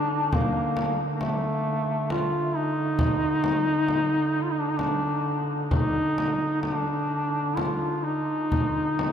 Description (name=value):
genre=caucasian folk, Caucasian lament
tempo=66 BPM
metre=3/4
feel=rubato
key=D phrygian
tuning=A4 = 440 Hz
part: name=warm duduk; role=melody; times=0.0-9.1 s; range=A3 to F4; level=-25 LUFS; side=equal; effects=analog delay
part: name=mellow duduk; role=drone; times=0.0-9.1 s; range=D3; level=-31 LUFS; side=equal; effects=stereo widening
part: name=frame drum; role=percussion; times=0.3-9.1 s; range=none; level=-31 LUFS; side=left 1 dB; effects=none
room=wet huge ambient reverb, RT60 8.8 s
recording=dreamy mix soaked in reverb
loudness=-23 LUFS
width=side -8 dB against mid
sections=0.0-9.1 A section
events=none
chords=none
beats=| 0.33 1.21 2.11 | 3.00 3.88 4.79 | 5.71 6.62 7.56 | 8.51